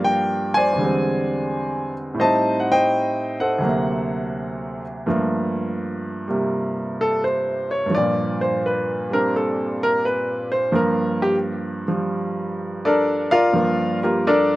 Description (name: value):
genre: solo jazz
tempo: 85 BPM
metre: 4/4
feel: swing 69% on 8ths, rubato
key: G minor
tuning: A4 = 441 Hz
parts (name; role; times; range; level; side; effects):
- clear baby grand piano; solo; 0.0-14.6 s; D2 to A5; -19 LUFS; equal; none
room: little or no reverb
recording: recorded outdoors, with no room sound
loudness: -19 LUFS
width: side -17 dB against mid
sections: 0.0-5.1 A section; 5.1-14.6 B section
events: grand piano solo 5.1-14.6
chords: 0.0 Gm7; 0.8 E7alt; 2.2 Am7b5; 3.6 D7b13; 5.1 Gm9